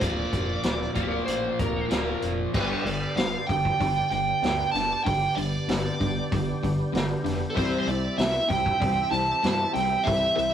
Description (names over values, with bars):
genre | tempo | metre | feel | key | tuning
classic rock | 96 BPM | 4/4 | straight | unclear | A4 = 438 Hz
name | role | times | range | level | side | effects
smooth overdriven lead guitar | melody | 0.0-10.5 s | A4 to A5 | -26 LUFS | right 3 dB | none
overdriven semi-hollow guitar | riff | 0.0-10.5 s | G2 to C4 | -29 LUFS | left 1 dB | none
growling picked electric bass | bass | 0.0-10.5 s | D1 to G2 | -34 LUFS | equal | overdrive
vintage drum kit | drums | 0.0-10.5 s | crash cymbal, hi-hat, kick drum, snare drum | -29 LUFS | left 1 dB | none
overdriven slide guitar | second line | 1.0-2.4 s | G4 to C5 | -31 LUFS | left 1 dB | none
tonewheel organ | sustained chords | 2.5-10.5 s | B3 to E5 | -36 LUFS | equal | slow rotary speaker, overdrive, chorus vibrato
picked steel-string acoustic guitar | accompaniment | 7.5-10.5 s | C3 to C5 | -37 LUFS | left 1 dB | none
honky-tonk upright piano | accompaniment | 7.6-10.5 s | E4 to C5 | -37 LUFS | left 6 dB | none
room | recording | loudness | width
moderate booth ambience, RT60 0.2 s | rough rehearsal-room recording | -23 LUFS | side -9 dB against mid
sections
0.0-2.5 A section; 2.5-10.5 B section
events
none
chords
0.0 Bb/D; 2.5 G; 7.6 C